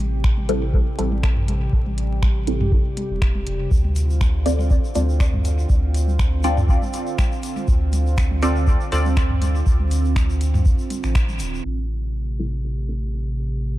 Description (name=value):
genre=dub techno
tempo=121 BPM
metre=4/4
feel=swing 54% on 16ths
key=A minor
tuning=A4 = 442 Hz
part: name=warbly tape-like pad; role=sustained chords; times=0.0-13.8 s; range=C3 to G4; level=-29 LUFS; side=right 3 dB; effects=chorus, built-in reverb, sidechain pumping
part: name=soft dub sub bass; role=bass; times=0.0-13.8 s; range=D1 to D2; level=-22 LUFS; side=equal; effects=sidechain pumping
part: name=deep house drum kit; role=drums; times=0.2-11.5 s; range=finger snaps, hi-hat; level=-34 LUFS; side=equal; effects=overdrive, dub echo
part: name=electronic kick drum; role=drums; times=0.2-11.3 s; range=none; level=-19 LUFS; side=equal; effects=none
part: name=electronic toms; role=percussion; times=0.4-11.4 s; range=none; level=-28 LUFS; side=equal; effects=sidechain pumping on toms
part: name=filtered dub chord stab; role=stabs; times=0.5-9.1, 12.4-13.0 s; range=G3 to D5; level=-27 LUFS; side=equal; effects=phaser, sidechain pumping, dub echo
part: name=egg shaker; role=percussion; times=3.7-11.6 s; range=none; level=-40 LUFS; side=left 5 dB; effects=none
room=digital ambience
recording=dark, warm production, vinyl crackle, low-pass filter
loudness=-18 LUFS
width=side -16 dB against mid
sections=0.0-11.6 A section; 11.6-13.8 B section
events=band accent 11.2; filter sweep on ambient pad 11.6-13.8; filter sweep 11.6-13.8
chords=0.0 Am7; 3.7 Dm7; 11.6 Am7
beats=0.24 0.74 1.24 | 1.73 2.23 2.72 3.22 | 3.71 4.21 4.71 5.20 | 5.70 6.19 6.69 7.18 | 7.68 8.18 8.67 9.17 | 9.66 10.16 10.66 11.15 | 11.65 12.14 12.64 13.13 | 13.63